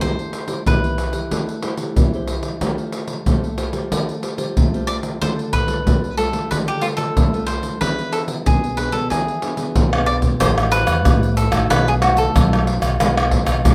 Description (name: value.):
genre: samba and choro.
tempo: 92 BPM.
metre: 4/4.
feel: straight.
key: A minor.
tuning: A4 = 440 Hz.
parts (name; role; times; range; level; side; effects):
cavaquinho; melody; 0.0-12.6 s; F4 to D5; -25 LUFS; equal; slapback echo, plate reverb.
nylon-string guitar; accompaniment; 0.0-13.7 s; B2 to C5; -28 LUFS; equal; none.
surdo, pandeiro, tamborim and egg shaker; percussion; 0.0-13.7 s; none; -21 LUFS; equal; none.
overdriven fingered electric bass; bass; 10.4-13.7 s; A1 to B2; -23 LUFS; equal; none.
room: moderate studio reverb, RT60 0.8 s.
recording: none.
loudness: -19 LUFS.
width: mono.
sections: 0.0-10.4 A section; 10.4-13.7 B section.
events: drum fill 9.9-10.4.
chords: 0.0 Am7; 2.6 Fadd9/A; 5.2 Dm; 7.8 E7; 10.4 Am7; 11.7 B7; 13.0 E7/B.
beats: | 0.02 0.67 1.31 1.96 | 2.61 3.26 3.91 4.56 | 5.21 5.86 6.51 7.16 | 7.81 8.46 9.11 9.76 | 10.41 11.06 11.71 12.36 | 13.01 13.66.